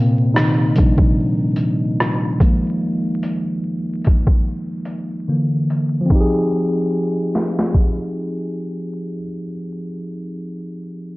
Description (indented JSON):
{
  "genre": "lo-fi hip hop",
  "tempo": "73 BPM",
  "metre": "4/4",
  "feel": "swing 58% on 16ths",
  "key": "F dorian",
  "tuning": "A4 = 440 Hz",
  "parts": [
    { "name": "mellow tine electric piano", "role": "accompaniment", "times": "0.0-11.2 s", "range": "Bb2 to Ab4", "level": "-19 LUFS", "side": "equal", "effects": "medium stereo tremolo, cassette tape, low-pass filter" },
    { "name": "boom bap sampler-style drum kit", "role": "drums", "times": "0.4-8.0 s", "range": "hi-hat, kick drum, rim click, snare drum", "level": "-16 LUFS", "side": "equal", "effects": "overdrive" }
  ],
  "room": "light reverb",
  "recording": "dark, warm production, vinyl crackle, low-pass filter",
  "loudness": "-16 LUFS",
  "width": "side -21 dB against mid",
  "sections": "0.0-6.1 A section; 6.1-9.4 B section",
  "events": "tine electric piano solo 0.0-6.1; filter sweep 0.0-6.1; kick muted 4.5-6.1",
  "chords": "0.0 Ebmaj9; 2.4 Ebsus24; 5.3 Dsus2; 6.1 Fm9"
}